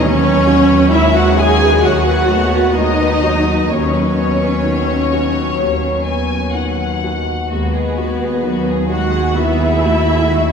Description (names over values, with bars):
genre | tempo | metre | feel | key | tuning
cinematic, emotional film score for orchestra | 64 BPM | 4/4 | rubato | unclear | A4 = 438 Hz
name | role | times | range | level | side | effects
rich studio violin section | melody | 0.0-10.5 s | F#4 to G#5 | -23 LUFS | left 4 dB | none
warm symphonic violin section | second line | 0.0-10.5 s | B4 to G#5 | -20 LUFS | left 2 dB | none
dark symphonic viola section | accompaniment | 0.0-10.5 s | B3 to G#4 | -17 LUFS | right 1 dB | none
warm concert grand piano | accompaniment | 0.0-10.5 s | D#2 to F#4 | -20 LUFS | left 2 dB | none
rich symphonic double bass section | bass | 0.0-10.5 s | D#2 | -20 LUFS | right 3 dB | none
warm symphonic cello section | bass | 0.0-10.5 s | F#3 to B3 | -22 LUFS | right 1 dB | none
room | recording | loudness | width
wet church reverb, RT60 3.8 s | recorded in a church or concert hall | -12 LUFS | side -6 dB against mid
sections
0.0-10.5 A section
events
none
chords
0.0 Badd9/D#; 7.5 G#m7/D#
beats
| 0.02 0.92 1.84 2.77 | 3.71 4.65 5.60 6.55 | 7.50 8.44 9.37 10.30